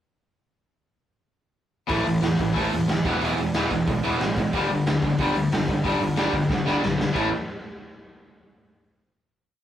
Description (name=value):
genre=punk rock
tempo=183 BPM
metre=4/4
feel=straight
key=unclear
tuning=A4 = 440 Hz
part: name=cranked stack guitar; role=riff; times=1.9-7.3 s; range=E2 to A3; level=-25 LUFS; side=left 3 dB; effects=overdrive
part: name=distorted electric guitar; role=riff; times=1.9-7.3 s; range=G2 to E4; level=-25 LUFS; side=right 3 dB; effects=distortion
part: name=fuzz picked electric bass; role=bass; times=1.9-7.3 s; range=E1 to E2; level=-30 LUFS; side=equal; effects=overdrive
part: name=raw garage drum kit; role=drums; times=1.9-7.2 s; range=crash cymbal, hi-hat, kick drum, snare drum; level=-28 LUFS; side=equal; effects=none
room=moderate studio reverb, RT60 0.6 s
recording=rough rehearsal-room recording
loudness=-21 LUFS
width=side -11 dB against mid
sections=1.9-7.2 verse; 7.2-8.5 final chord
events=drum fill 6.5-7.2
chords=1.9 A5; 3.0 E; 4.5 G5; 7.2 A5